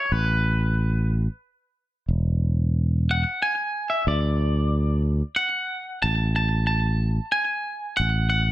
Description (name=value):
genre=post-rock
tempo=91 BPM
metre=3/4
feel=straight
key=unclear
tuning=A4 = 440 Hz
part: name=twangy electric guitar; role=melody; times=0.0-8.5 s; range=B4 to A5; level=-24 LUFS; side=equal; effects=slapback echo
part: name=fingered electric bass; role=bass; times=0.1-8.5 s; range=E1 to D2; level=-21 LUFS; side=equal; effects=none
room=digital ambience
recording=none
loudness=-21 LUFS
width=side -15 dB against mid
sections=0.0-8.5 A section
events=none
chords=0.0 Asus2; 2.1 E; 4.1 D; 6.0 A5